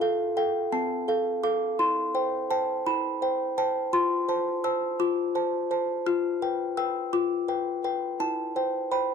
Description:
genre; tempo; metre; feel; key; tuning
classical, lullaby for music box; 56 BPM (dotted quarters); 6/8; straight; C major; A4 = 437 Hz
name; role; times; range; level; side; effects
music box; solo; 0.0-9.1 s; C4 to F6; -25 LUFS; left 1 dB; none
room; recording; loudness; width
light reverb; dark, warm production; -25 LUFS; side -6 dB against mid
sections
0.0-9.1 A section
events
none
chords
0.0 F; 1.8 C/E; 3.9 Dm7/F; 6.1 G7/F; 8.2 C/E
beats
0.73 | 1.80 2.86 | 3.93 4.99 | 6.06 7.13 | 8.20

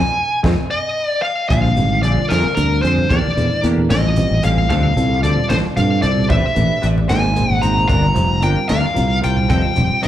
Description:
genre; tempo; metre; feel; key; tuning
electric jazz fusion; 75 BPM (dotted quarters); 6/8; straight; unclear; A4 = 439 Hz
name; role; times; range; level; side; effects
smooth overdriven lead guitar; melody; 0.0-10.1 s; Bb4 to Bb5; -19 LUFS; left 2 dB; tape echo
bell-like tine electric piano; accompaniment; 0.4-10.1 s; D3 to D5; -24 LUFS; right 3 dB; analog chorus, slapback echo
clean electric guitar; stabs; 0.4-10.1 s; F3 to C5; -29 LUFS; left 2 dB; ensemble chorus, slapback echo
sustaining fretless electric bass; bass; 0.4-10.1 s; F1 to G2; -17 LUFS; equal; lush chorus
crisp fusion drum kit; drums; 0.4-10.1 s; hi-hat, kick drum, snare drum; -24 LUFS; equal; none
congas; percussion; 0.4-10.0 s; none; -25 LUFS; equal; none
room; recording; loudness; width
studio reverb; live gig heard through the venue's PA, club reverb; -14 LUFS; side -12 dB against mid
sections
0.0-1.5 A section; 1.5-10.1 B section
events
band accent 0.0-1.5; lead electric guitar solo 0.0-1.5; drum fill 1.2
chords
0.0 Fm7; 0.7 N.C.; 1.5 Bb9; 3.1 Em7b5; 3.9 A7alt; 4.7 Dm7; 6.3 Am11; 7.1 Ab9; 7.9 Gm7; 9.5 F7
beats
0.71 | 1.51 2.30 | 3.10 3.90 | 4.70 5.50 | 6.30 7.10 | 7.89 8.70 | 9.49

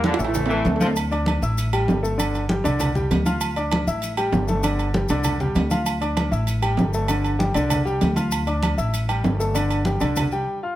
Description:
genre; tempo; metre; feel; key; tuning
latin, salsa; 196 BPM; 4/4; straight; D minor; A4 = 441 Hz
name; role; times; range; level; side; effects
brilliant trombone section; melody; 0.0-0.8 s; E3 to D4; -26 LUFS; equal; none
bright saxophone section; second line; 0.0-0.9 s; D3 to F3; -29 LUFS; left 2 dB; none
clear concert grand piano; accompaniment; 0.0-10.8 s; D3 to F6; -25 LUFS; left 1 dB; none
upright bass; bass; 0.0-10.4 s; G1 to E2; -24 LUFS; equal; none
congas; percussion; 0.0-10.5 s; none; -26 LUFS; equal; none
maracas; percussion; 0.0-10.5 s; none; -37 LUFS; left 6 dB; none
timbales and agogo bells; percussion; 0.0-10.3 s; none; -28 LUFS; right 6 dB; none
room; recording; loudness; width
moderate large studio reverb, RT60 1.1 s; none; -19 LUFS; side -14 dB against mid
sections
1.0-10.8 A section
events
drum fill 0.0-1.0; break 10.5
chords
0.3 A5; 2.2 G5; 2.8 Csus2; 3.4 Dm; 4.0 A5; 4.6 G5; 5.2 Csus2; 5.9 Dm; 6.5 A5; 7.1 G5; 7.7 Csus2; 8.3 Dm; 8.9 A5; 9.6 G5; 10.2 Csus2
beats
0.04 0.35 0.65 | 0.96 1.27 1.57 1.88 | 2.19 2.49 2.80 3.10 | 3.41 3.72 4.02 4.33 | 4.64 4.94 5.25 5.56 | 5.86 6.17 6.48 6.78 | 7.09 7.40 7.71 8.01 | 8.32 8.63 8.94 9.24 | 9.55 9.86 10.16 10.47

